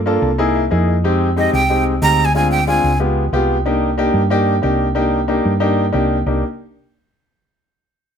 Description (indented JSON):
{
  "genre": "jazz",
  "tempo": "184 BPM",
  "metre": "4/4",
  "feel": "straight",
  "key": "C minor",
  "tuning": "A4 = 439 Hz",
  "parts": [
    { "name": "hollow-body short-scale fingered electric bass", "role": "bass", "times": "0.0-6.4 s", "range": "C2 to G2", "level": "-19 LUFS", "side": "right 1 dB", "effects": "none" },
    { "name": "warm concert grand piano", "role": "accompaniment", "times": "0.1-6.4 s", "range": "Ab3 to A5", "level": "-16 LUFS", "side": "left 2 dB", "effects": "none" },
    { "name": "breathy bright jazz flute", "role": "melody", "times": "1.4-3.0 s", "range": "Eb5 to Bb5", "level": "-16 LUFS", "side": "right 2 dB", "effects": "plate reverb" }
  ],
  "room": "light reverb",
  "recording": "none",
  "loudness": "-14 LUFS",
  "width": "side -7 dB against mid",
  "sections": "0.0-6.3 A section; 6.3-7.6 B section",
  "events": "grand piano fill 0.1-1.0",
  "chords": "0.4 C7alt; 1.0 Fm9; 2.3 Dm7b5; 3.0 Db7#11; 3.7 Cm7"
}